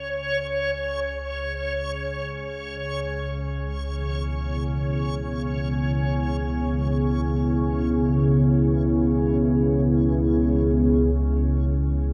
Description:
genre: dark ambient drone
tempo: free time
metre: none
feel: none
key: C# minor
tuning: A4 = 439 Hz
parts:
  - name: organ-like drone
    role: drone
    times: 0.0-12.1 s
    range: C#2 to C#3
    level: -28 LUFS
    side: equal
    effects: ensemble chorus, built-in reverb
  - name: backwards swelling texture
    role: texture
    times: 0.0-11.2 s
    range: C#5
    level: -33 LUFS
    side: equal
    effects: built-in reverb
  - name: dark analog pad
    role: sustained chords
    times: 3.5-12.1 s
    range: C#3 to G#4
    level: -25 LUFS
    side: equal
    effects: chorus
room: wet cathedral reverb, RT60 5.7 s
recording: none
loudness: -24 LUFS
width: mono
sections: 0.0-11.2 A section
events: fade-in on synth drone 0.0-11.2; fade-out on synth texture 0.0-11.2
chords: 0.0 C#m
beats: free time

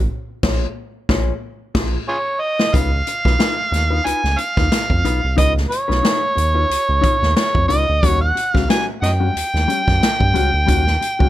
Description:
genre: funk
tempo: 91 BPM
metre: 4/4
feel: swing 56% on 16ths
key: unclear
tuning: A4 = 439 Hz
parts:
  - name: round analog bass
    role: bass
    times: 0.0-11.3 s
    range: A#1 to G2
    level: -19 LUFS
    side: equal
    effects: none
  - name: mellow electric guitar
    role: accompaniment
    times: 0.4-11.3 s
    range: G3 to C#5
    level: -25 LUFS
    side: left 7 dB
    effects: none
  - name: swinging big-band drum kit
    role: drums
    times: 0.4-11.3 s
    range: crash cymbal, hi-hat, kick drum, snare drum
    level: -20 LUFS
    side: equal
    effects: none
  - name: overdriven harmonica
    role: melody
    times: 2.1-11.3 s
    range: E#4 to G#5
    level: -19 LUFS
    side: right 1 dB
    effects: none
room: light reverb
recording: none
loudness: -15 LUFS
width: side -14 dB against mid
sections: 0.0-2.7 A section; 2.7-11.3 B section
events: band accent 0.1-2.7; drum fill 1.4-2.7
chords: 0.1 A#m7; 2.7 C#9; 8.0 D#7#9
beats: | 0.11 0.76 1.42 2.08 | 2.74 3.40 4.06 4.72 | 5.38 6.04 6.70 7.37 | 8.03 8.69 9.35 10.02 | 10.68

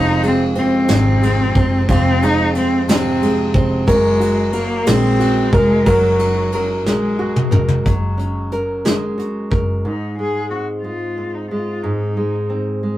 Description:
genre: six-eight pop ballad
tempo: 60 BPM (dotted quarters)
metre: 6/8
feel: straight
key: unclear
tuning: A4 = 440 Hz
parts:
  - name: warm cello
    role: melody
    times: 0.0-12.6 s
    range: Gb3 to Ab4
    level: -20 LUFS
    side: left 1 dB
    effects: none
  - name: nylon-string guitar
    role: accompaniment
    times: 0.0-13.0 s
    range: F2 to Bb4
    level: -18 LUFS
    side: right 1 dB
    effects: none
  - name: vintage muted fingered electric bass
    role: bass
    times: 0.0-9.8 s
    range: F1 to Bb1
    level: -20 LUFS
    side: equal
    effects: none
  - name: soft brush drum kit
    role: drums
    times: 0.2-9.7 s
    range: hi-hat, kick drum, ride cymbal, snare drum, toms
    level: -20 LUFS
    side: equal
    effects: none
room: wet booth ambience, RT60 0.2 s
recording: rough rehearsal-room recording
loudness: -14 LUFS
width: side -14 dB against mid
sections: 0.0-7.9 A section; 7.9-9.8 B section; 9.8-13.0 C section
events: drum fill 6.9-7.9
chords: 0.0 Fm; 3.9 Gbadd9; 9.8 Ab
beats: 0.90 | 1.89 2.88 | 3.88 4.87 | 5.87 6.86 | 7.85 8.85 | 9.85 10.84 | 11.84 12.84

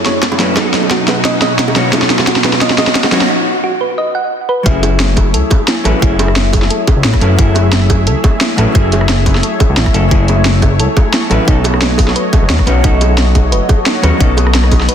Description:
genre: liquid drum and bass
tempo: 176 BPM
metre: 4/4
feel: straight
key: F# dorian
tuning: A4 = 440 Hz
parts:
  - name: vintage hollow-body jazz guitar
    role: accompaniment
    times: 0.0-14.9 s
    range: F#3 to C#5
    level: -17 LUFS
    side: equal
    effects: dub echo
  - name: lush unison pad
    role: sustained chords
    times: 0.0-14.9 s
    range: F#2 to E5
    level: -20 LUFS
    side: left 1 dB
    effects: chorus, phaser
  - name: thumb-piano-like synth pluck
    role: arpeggios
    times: 0.0-14.9 s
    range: D#4 to F#5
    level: -21 LUFS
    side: right 3 dB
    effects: chorus, dub echo
  - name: riser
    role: sound effects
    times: 0.0-3.3 s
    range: none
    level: -21 LUFS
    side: right 1 dB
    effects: none
  - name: drum and bass drum kit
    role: drums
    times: 0.1-14.9 s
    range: hi-hat, rim click, snare drum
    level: -15 LUFS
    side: equal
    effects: small room ambience
  - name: bongos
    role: percussion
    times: 0.1-14.8 s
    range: none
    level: -22 LUFS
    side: right 4 dB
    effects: none
  - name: electronic kick drum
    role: drums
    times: 0.2-14.8 s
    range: none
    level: -12 LUFS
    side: equal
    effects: high-pass filter on kick, small room ambience
  - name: smooth synth bass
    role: bass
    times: 4.7-14.9 s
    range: F#1 to D#2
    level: -13 LUFS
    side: equal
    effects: none
room: light reverb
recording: dense, heavily limited modern master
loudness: -9 LUFS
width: side -8 dB against mid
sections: 0.0-4.7 A section; 4.7-14.9 B section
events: build-up 0.0-4.7; drum fill 0.0-3.3; riser 0.0-3.3; break 3.3-4.7; drop 4.7-14.9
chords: 0.0 F#m9; 0.6 B7; 4.7 F#m9; 11.5 B7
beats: 0.23 | 0.57 0.91 1.25 1.59 | 1.93 2.27 2.61 2.96 | 3.29 3.64 3.98 4.32 | 4.66 5.00 5.34 5.68 | 6.02 6.36 6.71 7.04 | 7.39 7.73 8.07 8.41 | 8.75 9.09 9.43 9.77 | 10.11 10.46 10.79 11.14 | 11.48 11.82 12.16 12.50 | 12.84 13.18 13.52 13.86 | 14.21 14.54 14.89

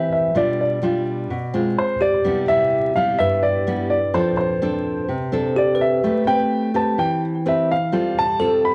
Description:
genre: bossa nova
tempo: 127 BPM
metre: 4/4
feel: straight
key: unclear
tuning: A4 = 440 Hz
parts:
  - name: warm grand piano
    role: melody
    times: 0.0-8.7 s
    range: C5 to B5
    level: -23 LUFS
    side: equal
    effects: cassette tape
  - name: bell-like tine electric piano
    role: accompaniment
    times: 0.0-8.7 s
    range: G4 to B4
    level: -26 LUFS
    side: equal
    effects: cassette tape
  - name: nylon-string guitar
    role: accompaniment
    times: 0.0-8.7 s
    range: G2 to B4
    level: -24 LUFS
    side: equal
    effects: cassette tape
room: wet small room reverb, RT60 0.5 s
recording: home recording on cassette, vinyl crackle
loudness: -20 LUFS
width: mono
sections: 0.0-8.7 A section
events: none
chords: 0.4 G7/B; 1.8 Fm69/Ab; 2.3 Cmaj7; 4.1 F6; 6.0 Am9; 7.9 G9sus4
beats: | 0.36 0.83 1.31 1.78 | 2.25 2.73 3.20 3.67 | 4.14 4.62 5.09 5.56 | 6.03 6.51 6.98 7.45 | 7.92 8.40

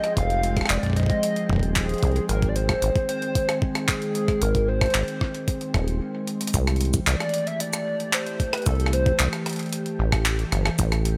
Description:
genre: IDM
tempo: 113 BPM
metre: 4/4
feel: straight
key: unclear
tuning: A4 = 440 Hz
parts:
  - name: warbly nostalgic lead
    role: melody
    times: 0.0-9.5 s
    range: Ab4 to F5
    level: -30 LUFS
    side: equal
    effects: analog chorus, vintage 12-bit sampler grit, tape echo
  - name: glassy FM pad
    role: sustained chords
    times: 0.0-11.2 s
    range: Eb3 to C5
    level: -32 LUFS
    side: equal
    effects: ensemble chorus, built-in reverb, vintage 12-bit sampler grit
  - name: jungle sampler-style drum kit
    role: drums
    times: 0.0-11.2 s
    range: handclaps, hi-hat, rim click, shaker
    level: -30 LUFS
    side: equal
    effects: small room ambience
  - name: flickering grainy texture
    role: texture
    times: 0.0-6.0 s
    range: G5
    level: -47 LUFS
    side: equal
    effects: none
  - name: deep acid bass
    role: bass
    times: 0.2-11.2 s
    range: Eb1 to C2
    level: -26 LUFS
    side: equal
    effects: none
  - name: electronic kick drum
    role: drums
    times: 0.2-10.9 s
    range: none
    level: -26 LUFS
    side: equal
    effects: small room ambience
room: light reverb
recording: none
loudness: -24 LUFS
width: mono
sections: 0.0-6.5 A section; 6.5-11.2 B section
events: stop 6.0-6.5; drum fill 6.3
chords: 0.0 Fm; 2.3 Ab; 6.5 C6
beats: | 0.17 0.70 1.23 1.76 | 2.29 2.82 3.35 3.88 | 4.42 4.95 5.48 6.01 | 6.54 7.07 7.60 8.13 | 8.66 9.20 9.73 10.26 | 10.79

